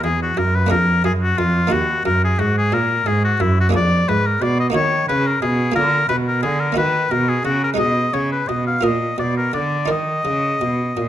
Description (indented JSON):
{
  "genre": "classical, baroque-style sonata movement with continuo",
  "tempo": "59 BPM (dotted quarters)",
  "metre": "6/8",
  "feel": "rubato",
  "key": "Eb minor from 3.7 s",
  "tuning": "A4 = 440 Hz",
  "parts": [
    { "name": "clear oboe", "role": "melody", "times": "0.0-11.1 s", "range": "E4 to F5", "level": "-20 LUFS", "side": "left 3 dB", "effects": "none" },
    { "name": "buff-stop harpsichord", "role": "accompaniment", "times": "0.0-11.1 s", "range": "D#2 to Bb4", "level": "-24 LUFS", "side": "right 2 dB", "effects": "none" },
    { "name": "rich cello", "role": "bass", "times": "0.0-11.1 s", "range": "D#2 to Eb3", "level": "-20 LUFS", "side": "right 2 dB", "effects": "none" }
  ],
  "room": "moderate recital hall reverb, RT60 1.2 s",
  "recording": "close, detailed microphones",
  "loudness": "-16 LUFS",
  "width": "side -11 dB against mid",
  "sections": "0.0-11.1 A section",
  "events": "none",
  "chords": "0.0 D#m; 0.7 A#7/E#; 1.7 D#m; 3.7 Bb7/F; 4.8 Ebm; 5.8 Bb; 6.8 Ebm; 7.8 Abm/Cb; 8.8 Bb; 9.9 Eb5"
}